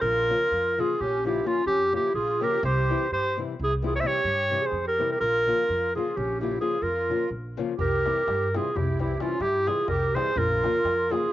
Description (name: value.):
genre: balkan folk, Balkan wedding band.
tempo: 257 BPM (eighths).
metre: 11/8.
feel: straight.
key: unclear.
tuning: A4 = 440 Hz.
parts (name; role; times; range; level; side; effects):
clear clarinet; melody; 0.0-11.3 s; F4 to E5; -24 LUFS; equal; cassette tape.
accordion; second line; 0.0-11.3 s; Db4 to C5; -33 LUFS; right 8 dB; light tremolo tuning, cassette tape.
upright bass; bass; 0.0-11.1 s; Bb1 to G2; -31 LUFS; equal; transformer saturation.
nylon-string guitar; accompaniment; 0.3-11.3 s; C3 to F4; -31 LUFS; left 7 dB; cassette tape.
darbuka; percussion; 7.8-11.3 s; none; -34 LUFS; left 3 dB; none.
room: light reverb, small room ambience.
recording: home recording on cassette, nothing above 7.5 kHz.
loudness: -23 LUFS.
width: side -14 dB against mid.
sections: 0.0-11.3 A section.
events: none.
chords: 0.0 Bbm; 2.6 C; 5.2 Bbm; 7.8 C; 10.4 Bbm.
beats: | 0.03 0.27 0.51 0.74 0.98 1.22 1.45 1.69 1.93 2.16 2.40 | 2.63 2.87 3.10 3.34 3.57 3.81 4.04 4.28 4.51 4.74 4.98 | 5.21 5.45 5.68 5.91 6.15 6.38 6.61 6.85 7.08 7.32 7.55 | 7.78 8.02 8.25 8.48 8.72 8.95 9.19 9.42 9.65 9.89 10.12 | 10.35 10.59 10.82 11.05 11.29.